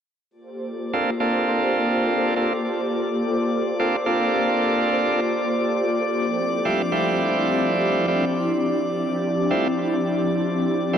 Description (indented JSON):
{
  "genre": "drum and bass",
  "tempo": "168 BPM",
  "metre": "4/4",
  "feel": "straight",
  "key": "G minor",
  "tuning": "A4 = 440 Hz",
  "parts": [
    { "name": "ethereal airy pad", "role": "sustained chords", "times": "0.5-11.0 s", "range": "F3 to C5", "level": "-23 LUFS", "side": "left 1 dB", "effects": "ensemble chorus, built-in reverb" },
    { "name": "drifting glass-harmonics texture", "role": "texture", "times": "0.8-11.0 s", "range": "D5 to D6", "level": "-28 LUFS", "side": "right 1 dB", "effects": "chorus, built-in reverb" },
    { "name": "bright tonewheel organ", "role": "stabs", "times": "0.9-11.0 s", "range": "F3 to A4", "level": "-23 LUFS", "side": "right 2 dB", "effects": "overdrive, stopped rotary speaker, low-pass filter, dub echo" }
  ],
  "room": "light reverb",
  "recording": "dry, gritty hardware recording, cassette tape",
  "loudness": "-20 LUFS",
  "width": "side -8 dB against mid",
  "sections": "0.3-11.0 A section",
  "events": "filter sweep on ambient pad 0.3-11.0",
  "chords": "0.3 Gm11; 6.0 Dm11"
}